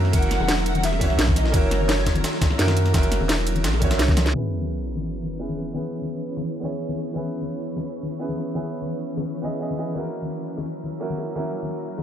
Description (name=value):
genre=liquid drum and bass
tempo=171 BPM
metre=4/4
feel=straight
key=C# dorian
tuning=A4 = 440 Hz
part: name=bright baby grand piano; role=accompaniment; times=0.0-12.0 s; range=A#3 to D#5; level=-29 LUFS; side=right 3 dB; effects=digital delay
part: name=shimmering ambient pad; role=sustained chords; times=0.0-12.0 s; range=E3 to B4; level=-31 LUFS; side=equal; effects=chorus, built-in reverb, sidechain pumping
part: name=warm sub bass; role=bass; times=0.0-4.3 s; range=E1 to F#2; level=-23 LUFS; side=equal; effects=none
part: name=garage drum kit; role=drums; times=0.0-12.0 s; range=crash cymbal, hi-hat, ride cymbal, snare drum, toms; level=-26 LUFS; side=equal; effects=low-pass filter on hats, low-pass filter on cymbals, low-pass filter on snare, low-pass filter on toms, low-pass filter on room
part: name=hollow clarinet-like synth lead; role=melody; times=0.1-2.6 s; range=C#5 to F#5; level=-30 LUFS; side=equal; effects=phaser, ensemble chorus, digital delay
part: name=breakbeat sampler-style drum kit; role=drums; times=0.1-4.3 s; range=hi-hat, snare drum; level=-31 LUFS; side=equal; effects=high-pass filter on hats, high-pass filter on snare, high-pass filter on room
part: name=electronic kick drum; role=drums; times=0.1-4.2 s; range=none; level=-22 LUFS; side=equal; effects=none
part: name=congas and bongos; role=percussion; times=0.1-12.0 s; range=none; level=-31 LUFS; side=left 4 dB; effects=none
part: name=sub drop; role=sound effects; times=4.3-5.7 s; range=none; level=-30 LUFS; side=equal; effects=none
room=little or no reverb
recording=low-pass filter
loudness=-21 LUFS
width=side -10 dB against mid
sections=0.0-4.3 A section; 4.3-12.0 B section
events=drop 0.0-4.3; drum fill 4.1; band accent 4.3; impact 4.3-5.7; filter sweep 4.3-12.0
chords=0.0 F#7; 4.3 C#m7; 10.0 F#7